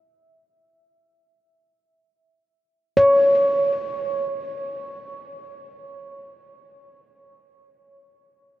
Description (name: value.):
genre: world meditative, free-time meditation music.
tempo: free time.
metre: none.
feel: none.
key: unclear.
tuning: A4 = 439 Hz.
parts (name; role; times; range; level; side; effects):
handpan; solo; 0.0-8.6 s; C#5 to E5; -19 LUFS; equal; ping-pong delay.
room: wet huge ambient reverb, RT60 7.5 s.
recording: worn, warbling old tape, cassette tape, warbly pitch drift.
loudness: -18 LUFS.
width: side -15 dB against mid.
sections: 0.0-2.6 A section; 2.6-8.6 A section.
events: none.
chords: none.